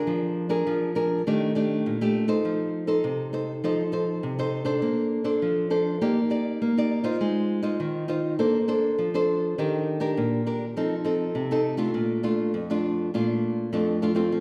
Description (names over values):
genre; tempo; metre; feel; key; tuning
samba; 101 BPM; 4/4; straight; Bb major; A4 = 440 Hz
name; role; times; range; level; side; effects
nylon-string guitar; solo; 0.0-14.4 s; F2 to D5; -26 LUFS; equal; none
room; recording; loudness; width
wet recital hall reverb, RT60 1.3 s; recorded in a church or concert hall; -26 LUFS; mono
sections
0.0-14.3 A section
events
none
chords
0.1 Bb7/F; 1.3 Ebmaj7#11; 2.5 F7; 4.8 Bbmaj9; 6.0 Ebmaj7/Bb; 7.2 Ab6; 8.4 Bbmaj9; 9.6 Ebmaj7; 10.8 F7; 11.9 Bbmaj7